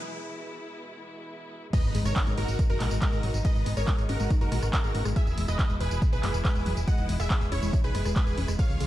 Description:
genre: uplifting trance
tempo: 140 BPM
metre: 4/4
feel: straight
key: unclear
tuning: A4 = 440 Hz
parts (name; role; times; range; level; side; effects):
- rich studio string section; sustained chords; 0.0-8.9 s; B2 to E#4; -38 LUFS; equal; sidechain pumping
- big supersaw lead; melody; 1.7-8.9 s; E4 to F#5; -36 LUFS; right 1 dB; phaser, sidechain pumping, tape echo
- wide unison pluck; second line; 1.7-8.9 s; A#4 to F#5; -39 LUFS; equal; sidechain pumping, tape echo
- wide unison pluck; arpeggios; 1.7-8.8 s; F#3 to G#4; -36 LUFS; left 2 dB; cassette tape, sidechain pumping, tape echo
- electronic kick drum; drums; 1.7-8.7 s; none; -26 LUFS; equal; none
- punchy analog drum machine; drums; 1.7-8.9 s; crash cymbal, handclaps, hi-hat, ride cymbal, rim click, tambourine; -35 LUFS; right 1 dB; sidechain pumping on hats, sidechain pumping on cymbals, sidechain pumping on perc
- impact; sound effects; 1.7-3.4 s; none; -36 LUFS; equal; none
- solid FM bass; bass; 1.8-8.9 s; E1 to C#2; -29 LUFS; equal; sidechain pumping
room: little or no reverb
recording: dark, warm production, high-pass filter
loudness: -24 LUFS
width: side -14 dB against mid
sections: 0.0-1.7 A section; 1.7-8.9 B section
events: build-up 0.0-1.7; filter sweep 0.0-1.7; break 0.0-1.7; drop 1.7-8.9; impact 1.7-3.4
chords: 0.0 E; 1.7 G#m; 5.2 E

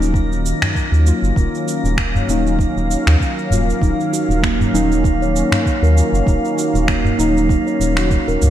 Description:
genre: organic downtempo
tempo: 98 BPM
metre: 4/4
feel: swing 56% on 16ths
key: Eb minor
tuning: A4 = 440 Hz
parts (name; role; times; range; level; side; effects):
- muted felt-like synth keys; accompaniment; 0.0-8.5 s; Gb3 to F5; -23 LUFS; left 3 dB; chorus, sidechain pumping, digital delay
- warm analog pad; sustained chords; 0.0-8.5 s; Eb3 to F5; -23 LUFS; equal; chorus, sidechain pumping
- round analog bass; bass; 0.0-8.5 s; Eb1 to Eb2; -17 LUFS; equal; sidechain pumping
- electronic shaker and finger snaps; drums; 0.0-8.5 s; none; -24 LUFS; right 1 dB; studio ambience, gated reverb
- drifting glass-harmonics texture; texture; 0.0-8.5 s; Bb3 to F5; -28 LUFS; right 3 dB; chorus, built-in reverb
- electronic kick drum; drums; 0.1-8.2 s; none; -18 LUFS; equal; studio ambience
- udu; percussion; 0.6-8.5 s; none; -21 LUFS; equal; none
- steel tongue drum; arpeggios; 3.8-8.5 s; Bb3 to Db5; -20 LUFS; right 3 dB; digital delay
room: light reverb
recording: bright 1980s-style digital production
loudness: -14 LUFS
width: side -11 dB against mid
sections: 0.0-8.5 A section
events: none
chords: 0.0 Ebm7

